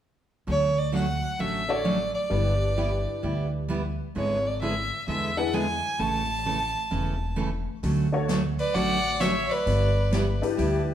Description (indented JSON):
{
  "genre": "country, western swing",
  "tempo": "130 BPM",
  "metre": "4/4",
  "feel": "swing 66% on 8ths",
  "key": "D major",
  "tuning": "A4 = 442 Hz",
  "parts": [
    { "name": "clear fiddle", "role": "melody", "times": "0.5-10.4 s", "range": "C#5 to A5", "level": "-28 LUFS", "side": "right 1 dB", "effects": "none" },
    { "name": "picked steel-string acoustic guitar", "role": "accompaniment", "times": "0.5-10.8 s", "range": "C#3 to A4", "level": "-30 LUFS", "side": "right 2 dB", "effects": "none" },
    { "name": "upright bass", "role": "bass", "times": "0.5-10.9 s", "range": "E1 to E2", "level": "-28 LUFS", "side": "equal", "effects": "none" },
    { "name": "honky-tonk upright piano", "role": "accompaniment", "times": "1.7-10.9 s", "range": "D4 to C#5", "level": "-30 LUFS", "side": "left 5 dB", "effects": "none" },
    { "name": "swinging big-band drum kit", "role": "drums", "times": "7.8-10.7 s", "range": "hi-hat, snare drum", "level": "-37 LUFS", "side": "left 2 dB", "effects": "none" },
    { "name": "clear fiddle", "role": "second line", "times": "8.6-10.4 s", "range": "B4 to D5", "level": "-29 LUFS", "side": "right 2 dB", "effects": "none" }
  ],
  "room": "wet large studio reverb, RT60 1.2 s",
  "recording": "band playing live in one room",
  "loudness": "-23 LUFS",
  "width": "side -10 dB against mid",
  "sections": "0.5-7.8 A section; 7.8-10.9 B section",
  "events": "none",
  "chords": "0.5 Dmaj7; 2.3 G6; 4.1 E7/G#; 6.0 A; 7.8 Dmaj7; 9.7 G6"
}